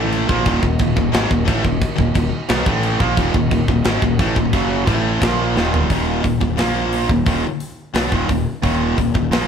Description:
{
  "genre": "heavy metal",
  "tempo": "176 BPM",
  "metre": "4/4",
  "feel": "straight",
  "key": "unclear",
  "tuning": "A4 = 444 Hz",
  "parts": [
    { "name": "rich chamber string section", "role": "sustained chords", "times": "0.0-5.9 s", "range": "Db3 to Gb5", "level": "-31 LUFS", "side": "equal", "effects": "none" },
    { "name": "distorted electric guitar", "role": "riff", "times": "0.0-9.5 s", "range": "Eb2 to Cb4", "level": "-21 LUFS", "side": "right 7 dB", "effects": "overdrive" },
    { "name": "heavy high-gain guitar", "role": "riff", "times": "0.0-9.5 s", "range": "Eb2 to Cb4", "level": "-22 LUFS", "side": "left 8 dB", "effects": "distortion" },
    { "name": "fuzz fingered electric bass", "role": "bass", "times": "0.0-9.5 s", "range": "Eb1 to Cb2", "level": "-23 LUFS", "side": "equal", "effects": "overdrive" },
    { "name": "tight metal drum kit", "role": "drums", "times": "0.1-9.4 s", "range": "crash cymbal, hi-hat, kick drum, snare drum, toms", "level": "-20 LUFS", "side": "equal", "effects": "none" }
  ],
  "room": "light reverb",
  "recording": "band playing live in one room",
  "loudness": "-15 LUFS",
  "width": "side -7 dB against mid",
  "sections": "0.0-5.9 A section; 5.9-9.5 B section",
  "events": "drum fill 5.6-5.9",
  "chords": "0.3 Ebm; 2.7 A5; 3.0 Ebm; 4.5 Gb5; 4.9 A5; 5.2 Bb5; 5.6 Ebm; 5.9 Eb5; 6.6 Bb5; 7.1 Ebm"
}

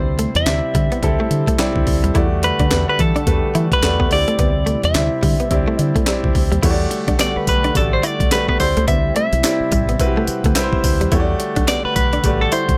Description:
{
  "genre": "R&B, new jack swing",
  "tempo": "107 BPM",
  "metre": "4/4",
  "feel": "swing 60% on 16ths",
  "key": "E minor",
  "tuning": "A4 = 440 Hz",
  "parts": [
    { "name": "clean electric guitar", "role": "melody", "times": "0.0-12.8 s", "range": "A4 to E5", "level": "-23 LUFS", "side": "equal", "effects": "none" },
    { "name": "warm concert grand piano", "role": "accompaniment", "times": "0.0-12.8 s", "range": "A3 to D5", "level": "-25 LUFS", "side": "equal", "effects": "none" },
    { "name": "chorused pulse-width pad", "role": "sustained chords", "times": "0.0-12.8 s", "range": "C3 to F#5", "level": "-29 LUFS", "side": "equal", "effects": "none" },
    { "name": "deep dub fingered electric bass", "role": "bass", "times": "0.0-12.8 s", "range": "A1 to E3", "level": "-23 LUFS", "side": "equal", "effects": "none" },
    { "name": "direct-recorded clean electric guitar", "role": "riff", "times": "0.2-12.6 s", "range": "G3 to E4", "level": "-27 LUFS", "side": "equal", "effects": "subtle chorus" },
    { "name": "breakbeat sampler-style drum kit", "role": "drums", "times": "0.2-12.8 s", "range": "crash cymbal, handclaps, hi-hat, kick drum, snare drum, tambourine", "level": "-22 LUFS", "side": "equal", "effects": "none" }
  ],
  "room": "little or no reverb",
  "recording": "none",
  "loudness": "-17 LUFS",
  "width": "mono",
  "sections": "0.0-6.6 A section; 6.6-12.8 B section",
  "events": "none",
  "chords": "0.0 D9sus4; 2.1 Em11; 4.1 D9sus4; 6.6 Em11; 8.6 D9sus4; 11.1 Em11"
}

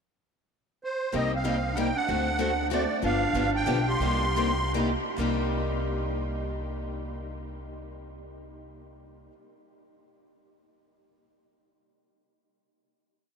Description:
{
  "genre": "acoustic string swing (jazz manouche)",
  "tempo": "134-191 BPM",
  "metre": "3/4",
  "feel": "swing 59% on 8ths",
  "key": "C minor",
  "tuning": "A4 = 440 Hz",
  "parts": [
    { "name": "musette accordion", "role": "melody", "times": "0.8-4.7 s", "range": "C5 to C6", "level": "-30 LUFS", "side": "right 2 dB", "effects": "analog delay" },
    { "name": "breathy clarinet", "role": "second line", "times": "1.1-4.7 s", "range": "A3 to G4", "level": "-34 LUFS", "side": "right 1 dB", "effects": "analog delay" },
    { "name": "picked steel-string acoustic guitar", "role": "accompaniment", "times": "1.1-9.3 s", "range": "C3 to A4", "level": "-33 LUFS", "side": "left 7 dB", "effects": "none" },
    { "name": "picked steel-string acoustic guitar", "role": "accompaniment", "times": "1.1-9.3 s", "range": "C3 to A4", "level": "-34 LUFS", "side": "right 4 dB", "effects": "none" },
    { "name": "upright bass", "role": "bass", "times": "1.1-9.3 s", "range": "G1 to D2", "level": "-32 LUFS", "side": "equal", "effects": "none" }
  ],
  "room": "wet huge ambient reverb, RT60 7.7 s",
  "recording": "dreamy mix soaked in reverb",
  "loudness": "-25 LUFS",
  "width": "side -6 dB against mid",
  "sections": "0.2-1.1 pickup bar; 1.1-5.2 A section; 5.2-7.9 final chord",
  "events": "slowing down 3.0-5.2",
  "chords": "0.2 N.C.; 1.1 Cm7; 2.1 D7; 3.0 G7; 4.0 Cm7"
}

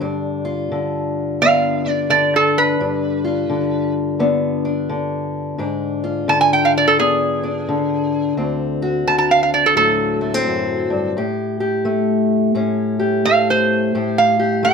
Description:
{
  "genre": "acoustic country blues, solo or duo",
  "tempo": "86 BPM",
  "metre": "4/4",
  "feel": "swing 63% on 8ths",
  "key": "unclear",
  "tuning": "A4 = 437 Hz",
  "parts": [
    { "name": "fingerpicked steel-string acoustic guitar", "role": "accompaniment", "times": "0.0-14.7 s", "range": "D2 to G4", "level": "-18 LUFS", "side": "left 3 dB", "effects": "none" },
    { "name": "metal-body resonator slide guitar", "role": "melody", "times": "1.4-14.7 s", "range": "G#4 to A5", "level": "-16 LUFS", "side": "right 3 dB", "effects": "plate reverb" }
  ],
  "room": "light reverb",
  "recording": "none",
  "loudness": "-16 LUFS",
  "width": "side -5 dB against mid",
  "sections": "0.0-14.7 A section",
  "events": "resonator guitar played with a steel bar solo 0.0-14.7",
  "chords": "0.0 G7; 5.6 G#dim7; 8.4 D7; 11.2 A7"
}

